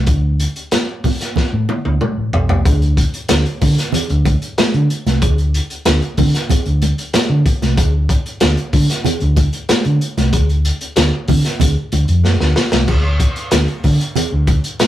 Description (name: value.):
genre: funk.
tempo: 94 BPM.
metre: 4/4.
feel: straight.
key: unclear.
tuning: A4 = 439 Hz.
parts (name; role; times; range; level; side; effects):
hollow-body short-scale fingered electric bass; bass; 0.0-14.6 s; A1 to D3; -16 LUFS; equal; none.
crunchy breakbeat drum kit; drums; 0.1-14.9 s; crash cymbal, hi-hat, kick drum, snare drum, toms; -17 LUFS; equal; none.
congas; percussion; 0.7-14.9 s; none; -22 LUFS; right 1 dB; none.
cowbell; percussion; 2.7-14.9 s; none; -30 LUFS; right 1 dB; none.
room: light reverb.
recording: rough rehearsal-room recording.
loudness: -13 LUFS.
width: side -13 dB against mid.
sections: 0.0-2.7 A section; 2.7-14.9 B section.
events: drum fill 1.4-2.7, 12.2-12.9.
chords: none.